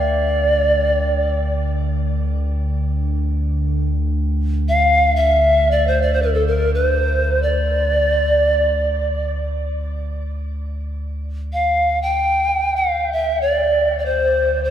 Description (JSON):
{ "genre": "world meditative, free-time meditation music", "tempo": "free time", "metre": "none", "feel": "none", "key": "D minor", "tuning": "A4 = 438 Hz", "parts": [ { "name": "polished pan flute", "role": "melody", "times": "0.0-14.7 s", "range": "A4 to G5", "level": "-17 LUFS", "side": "equal", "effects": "shimmer reverb, tape echo" }, { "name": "deep rumbling drone", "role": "drone", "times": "0.0-14.7 s", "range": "D2", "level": "-21 LUFS", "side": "equal", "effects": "built-in reverb, lush chorus" }, { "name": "tubular bells", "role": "texture", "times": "0.0-7.1 s", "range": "G4 to A4", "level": "-39 LUFS", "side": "left 1 dB", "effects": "shimmer reverb" } ], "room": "wet plate reverb, RT60 2.4 s", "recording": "dreamy mix soaked in reverb", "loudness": "-16 LUFS", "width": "side -10 dB against mid", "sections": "0.0-14.7 A section", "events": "none", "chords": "none" }